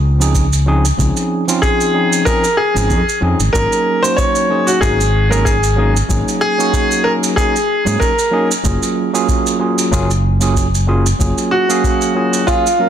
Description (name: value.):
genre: sunset chillout.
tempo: 94 BPM.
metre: 4/4.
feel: swing 55% on 16ths.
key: Gb lydian.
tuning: A4 = 440 Hz.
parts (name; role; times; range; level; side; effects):
fingered electric bass; bass; 0.0-11.3 s; Gb1 to Ab2; -15 LUFS; equal; none.
overdriven tine electric piano; accompaniment; 0.2-12.9 s; F3 to F5; -18 LUFS; moving between left 1 dB and right 6 dB; auto-pan, digital delay.
shaker; drums; 0.2-12.8 s; none; -22 LUFS; right 5 dB; none.
electronic kick drum; drums; 0.3-12.6 s; none; -19 LUFS; equal; none.
clear baby grand piano; melody; 1.6-12.9 s; F4 to Db5; -15 LUFS; left 1 dB; digital delay.
room: light reverb.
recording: dense, heavily limited modern master.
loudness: -12 LUFS.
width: side -9 dB against mid.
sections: 0.0-12.9 A section.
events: none.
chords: 0.0 Dbmaj9; 3.5 Ab9sus4; 8.6 Gbmaj9.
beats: 0.35 | 0.99 1.62 2.26 2.90 | 3.54 4.18 4.82 5.45 | 6.09 6.73 7.37 8.01 | 8.65 9.28 9.92 10.56 | 11.20 11.84 12.47.